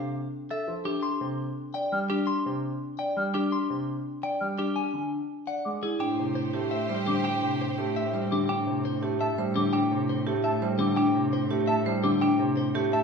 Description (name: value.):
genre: classical, minimalist pattern music.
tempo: 338 BPM (eighths).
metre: 7/8.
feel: straight.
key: A minor from 6.0 s.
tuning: A4 = 440 Hz.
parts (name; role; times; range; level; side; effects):
clean electric guitar; melody; 0.0-13.0 s; G4 to C6; -32 LUFS; left 3 dB; none.
warm grand piano; accompaniment; 0.0-13.0 s; C3 to A3; -30 LUFS; equal; none.
marimba with medium hard mallets; arpeggios; 0.5-13.0 s; D4 to D5; -29 LUFS; left 1 dB; none.
hollow concert flute; arpeggios; 1.9-13.0 s; A5 to F6; -34 LUFS; equal; none.
rich studio string section; sustained chords; 6.0-8.3 s; G4 to C5; -35 LUFS; right 3 dB; none.
rich cello; bass; 6.0-13.0 s; A2; -33 LUFS; right 4 dB; none.
room: wet stone room reverb, RT60 1.4 s.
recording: heard from further back in the room.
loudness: -25 LUFS.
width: side -5 dB against mid.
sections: 0.0-6.0 A section; 6.0-13.0 B section.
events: none.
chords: 0.0 Dm9; 1.0 Fsus2 (rootless); 4.8 E7; 6.0 Am7.